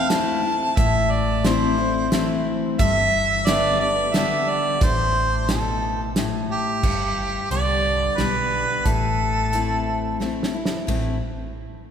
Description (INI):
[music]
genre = honky-tonk and classic country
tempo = 89 BPM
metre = 3/4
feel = straight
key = A minor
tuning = A4 = 440 Hz
[part]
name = warm harmonica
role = melody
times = 0.0-10.2 s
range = G4 to A5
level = -22 LUFS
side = right 2 dB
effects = none
[part]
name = picked steel-string acoustic guitar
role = accompaniment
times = 0.0-11.2 s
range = G2 to G4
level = -25 LUFS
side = left 5 dB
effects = none
[part]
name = vintage muted fingered electric bass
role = bass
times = 0.0-11.2 s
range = E1 to C2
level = -27 LUFS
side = equal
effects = none
[part]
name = natural country drum kit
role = drums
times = 0.1-11.0 s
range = crash cymbal, hi-hat, kick drum, ride cymbal, snare drum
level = -26 LUFS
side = right 1 dB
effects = none
[sound]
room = wet church reverb, RT60 3.1 s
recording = recorded in a church or concert hall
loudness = -19 LUFS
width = side -8 dB against mid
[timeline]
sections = 0.0-6.8 A section; 6.8-10.9 B section; 10.9-11.9 C section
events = drum fill 10.2-10.9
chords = 0.0 Am; 2.8 G; 4.8 Am; 6.8 G; 8.9 Am